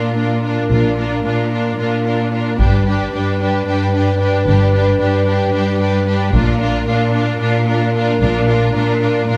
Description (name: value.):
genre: cinematic, epic orchestral film score.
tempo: 224 BPM (eighths).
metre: 7/8.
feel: straight.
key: Bb major.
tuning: A4 = 440 Hz.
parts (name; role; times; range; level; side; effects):
warm symphonic violin section; melody; 0.0-9.4 s; Bb4 to B4; -29 LUFS; equal; none.
rich symphonic violin section; second line; 0.0-9.4 s; F4 to G4; -26 LUFS; equal; none.
rich symphonic viola section; accompaniment; 0.0-9.4 s; D4; -25 LUFS; equal; none.
warm French horn section; sustained chords; 0.0-9.4 s; D4 to B4; -23 LUFS; equal; none.
rich symphonic cello section; bass; 0.0-9.4 s; G2 to Bb2; -20 LUFS; equal; none.
warm symphonic double bass section; bass; 0.7-8.7 s; G1 to Bb1; -21 LUFS; equal; none.
taiko ensemble; drums; 2.6-7.4 s; none; -21 LUFS; equal; none.
room: light reverb.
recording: close, detailed microphones.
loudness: -16 LUFS.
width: mono.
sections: 0.0-9.4 A section.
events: build-up 0.0-9.4.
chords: 0.0 Bb; 2.6 G; 6.3 Bb.